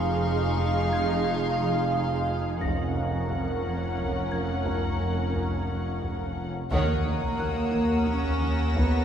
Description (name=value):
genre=cinematic, suspense film score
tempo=88 BPM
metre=3/4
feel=straight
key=unclear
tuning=A4 = 438 Hz
part: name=warm studio violin section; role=melody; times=0.0-9.0 s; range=F5 to Gb5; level=-34 LUFS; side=left 1 dB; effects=none
part: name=dark studio viola section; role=accompaniment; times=0.0-9.0 s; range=Db4 to Bb4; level=-32 LUFS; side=right 2 dB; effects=none
part: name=bubbling stepped-filter texture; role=sustained chords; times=0.0-9.0 s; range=Ab4 to Gb5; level=-34 LUFS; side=equal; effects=chorus, built-in reverb
part: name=warm studio cello section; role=riff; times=0.0-9.0 s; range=F2 to Eb4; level=-36 LUFS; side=right 1 dB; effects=none
part: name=dark studio double bass section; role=bass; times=0.0-9.0 s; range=F1 to Eb2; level=-33 LUFS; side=right 1 dB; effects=none
part: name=warm studio cello section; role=bass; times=0.0-9.0 s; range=F2 to Db4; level=-31 LUFS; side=right 1 dB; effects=none
part: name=saturated sub bass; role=drone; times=0.0-9.0 s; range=F1 to Eb2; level=-32 LUFS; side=equal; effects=none
part: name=clear studio violin section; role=texture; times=0.0-2.2, 6.7-9.0 s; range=C6 to Bb6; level=-41 LUFS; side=left 5 dB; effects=none
part: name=music box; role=texture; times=0.9-9.0 s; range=Gb5 to Bb6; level=-45 LUFS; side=left 3 dB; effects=none
part: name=taiko ensemble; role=drums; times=2.6-9.0 s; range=none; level=-33 LUFS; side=left 1 dB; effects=none
part: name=warm studio violin section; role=second line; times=6.7-9.0 s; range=Db5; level=-37 LUFS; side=left 1 dB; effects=none
room=wet cathedral reverb, RT60 4.7 s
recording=recorded in a church or concert hall, small room ambience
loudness=-24 LUFS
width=side -8 dB against mid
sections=0.0-6.7 A section; 6.7-9.0 B section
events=band accent 6.7-7.4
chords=0.0 Fm7; 2.6 Gb/F; 6.7 Ebm7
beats=| 0.57 1.26 1.94 | 2.62 3.30 3.98 | 4.67 5.35 6.03 | 6.71 7.39 8.07 | 8.76